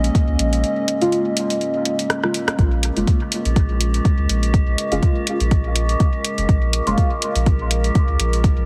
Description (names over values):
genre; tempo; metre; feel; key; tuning
dub techno; 123 BPM; 4/4; swing 56% on 16ths; Bb minor; A4 = 440 Hz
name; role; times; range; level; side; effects
dark analog pad; sustained chords; 0.0-8.7 s; Ab3 to Eb5; -29 LUFS; equal; chorus, sidechain pumping
soft dub sub bass; bass; 0.0-8.7 s; F1 to Db2; -22 LUFS; equal; sidechain pumping
punchy analog drum machine; drums; 0.0-8.5 s; hi-hat, rim click; -26 LUFS; equal; none
metallic inharmonic drone; texture; 0.0-8.7 s; Ab3 to Bb3; -30 LUFS; equal; chorus, built-in reverb, phaser, sidechain pumping
electronic kick drum; drums; 0.1-8.5 s; none; -19 LUFS; equal; none
deep mellow chord stab; stabs; 1.0-7.1 s; Db3 to F4; -27 LUFS; equal; chorus, phaser, sidechain pumping, dub echo
room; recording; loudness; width
light reverb, digital ambience; heavily compressed radio sound, multiband compression; -19 LUFS; mono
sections
0.0-8.7 A section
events
break 0.6-2.6; drum fill 2.1-2.6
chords
0.0 Bbm7